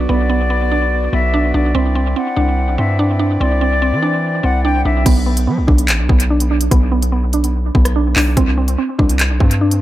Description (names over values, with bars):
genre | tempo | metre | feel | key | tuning
hip hop, drill | 145 BPM | 4/4 | half-time | B phrygian | A4 = 440 Hz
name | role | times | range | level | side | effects
pedal harmonium | sustained chords | 0.0-5.0 s | B3 to D5 | -24 LUFS | right 2 dB | none
mallet-like synth pluck | arpeggios | 0.0-9.8 s | B3 to D4 | -19 LUFS | right 2 dB | chorus, low-pass filter, dub echo
distorted 808-style bass | bass | 0.0-9.8 s | A1 to F#3 | -16 LUFS | equal | distortion
reedy silver concert flute | second line | 0.1-5.0 s | D5 to G5 | -21 LUFS | left 4 dB | dub echo
drill drum kit | drums | 5.1-9.8 s | crash cymbal, handclaps, hi-hat, kick drum, rim click | -15 LUFS | equal | dub echo
room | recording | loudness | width
light reverb | echo-heavy mix | -13 LUFS | side -14 dB against mid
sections
0.0-5.1 A section; 5.1-9.8 B section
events
none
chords
0.0 Bm; 1.7 Cadd9; 5.1 Bm; 8.4 Csus2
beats
| 0.09 0.51 0.92 1.33 | 1.75 2.16 2.58 2.99 | 3.40 3.82 4.23 4.64 | 5.06 5.47 5.89 6.30 | 6.71 7.13 7.54 7.96 | 8.37 8.78 9.20 9.61